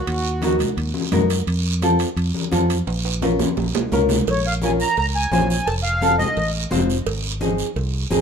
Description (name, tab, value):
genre	latin, cumbia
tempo	172 BPM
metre	4/4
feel	straight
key	Bb harmonic minor, Bb minor from 4.3 s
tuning	A4 = 440 Hz
part	accordion	melody	0.0-0.6, 4.3-6.5 s	Gb4 to Bb5	-22 LUFS	right 1 dB	light tremolo tuning
part	fingered electric bass	bass	0.1-8.2 s	F1 to Gb2	-23 LUFS	equal	none
part	guiro	percussion	0.1-8.2 s	none	-31 LUFS	right 7 dB	none
part	timbales and cowbell	percussion	0.1-7.9 s	none	-28 LUFS	right 8 dB	none
part	nylon-string guitar	accompaniment	0.4-8.2 s	C4 to C5	-23 LUFS	left 1 dB	none
part	congas	percussion	0.4-8.2 s	none	-25 LUFS	left 3 dB	none
room	light reverb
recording	minimal, uncompressed stereo recording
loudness	-18 LUFS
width	side -6 dB against mid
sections	0.0-4.3 A section; 4.3-8.2 B section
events	drum fill 2.9-4.3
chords	0.1 Ebm; 1.5 F; 2.9 Bbm; 5.7 F7; 7.1 Ab